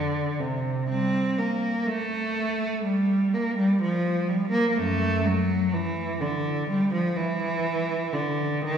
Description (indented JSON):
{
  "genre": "classical, baroque-style suite movement for unaccompanied cello",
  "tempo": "62 BPM",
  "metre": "4/4",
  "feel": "rubato",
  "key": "unclear",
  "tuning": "A4 = 441 Hz",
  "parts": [
    { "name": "rich cello", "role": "solo", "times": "0.0-8.8 s", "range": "Gb2 to C4", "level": "-23 LUFS", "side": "right 1 dB", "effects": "none" }
  ],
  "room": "wet concert hall reverb, RT60 2.2 s",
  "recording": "heard from further back in the room, small room ambience",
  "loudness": "-23 LUFS",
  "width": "side -8 dB against mid",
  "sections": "0.0-8.8 A section",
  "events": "none",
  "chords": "none"
}